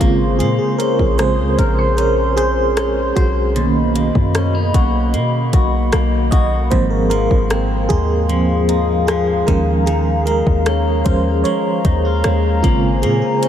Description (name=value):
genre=contemporary R&B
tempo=76 BPM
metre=4/4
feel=straight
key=Ab major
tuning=A4 = 438 Hz
part: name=FM electric piano with tremolo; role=accompaniment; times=0.0-13.5 s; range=Db3 to D#5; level=-19 LUFS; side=right 4 dB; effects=none
part: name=hollow soft pad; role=sustained chords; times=0.0-13.5 s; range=A#3 to C6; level=-21 LUFS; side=left 2 dB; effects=chorus
part: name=clean electric guitar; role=arpeggios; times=0.0-13.5 s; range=Ab2 to C5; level=-23 LUFS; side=left 3 dB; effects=analog delay
part: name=warm 808-style bass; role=bass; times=0.0-13.2 s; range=Ab1 to B2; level=-18 LUFS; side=equal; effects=none
part: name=smooth R&B drum kit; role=drums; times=0.0-13.5 s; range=hi-hat, kick drum, rim click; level=-21 LUFS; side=equal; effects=none
room=moderate huge ambient reverb, RT60 8.8 s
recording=dreamy mix soaked in reverb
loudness=-14 LUFS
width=side -10 dB against mid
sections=0.0-13.5 A section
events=FM electric piano solo 0.0-13.5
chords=0.0 Bbm9; 3.6 Bmaj7; 6.7 Ab6; 9.5 Eb9sus4; 12.6 Bbm9